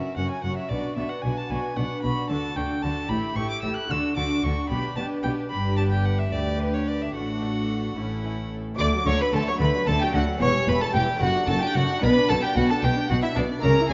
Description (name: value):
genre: classical, baroque-style concerto movement with solo episodes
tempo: 74 BPM (dotted quarters)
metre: 6/8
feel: straight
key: D major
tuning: A4 = 438 Hz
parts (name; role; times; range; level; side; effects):
- rich chamber violin section; melody; 0.0-13.9 s; A4 to D6; -37 LUFS; equal; none
- rich violin; melody; 0.0-13.9 s; D4 to F#6; -31 LUFS; equal; none
- rich chamber violin section; second line; 0.0-13.9 s; E4 to D6; -34 LUFS; equal; none
- dark chamber viola section; accompaniment; 0.0-13.9 s; E3 to F#4; -33 LUFS; equal; none
- lute; accompaniment; 0.0-13.9 s; D2 to G4; -35 LUFS; equal; none
- dark studio double bass section; bass; 0.2-13.9 s; E1 to D2; -31 LUFS; equal; none
- warm chamber cello section; bass; 0.2-13.9 s; D2 to D3; -31 LUFS; equal; none
room: moderate recital hall reverb, RT60 1.8 s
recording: nothing above 7.5 kHz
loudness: -24 LUFS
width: mono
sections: 0.0-8.8 A section; 8.8-13.9 B section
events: none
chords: 0.0 F#; 0.7 Bm; 2.3 D; 3.1 A5; 3.9 D; 4.7 G/B; 5.5 G; 7.1 D/A; 8.0 A; 8.8 D; 10.4 C#dim/E; 11.2 D/F#; 12.0 Bm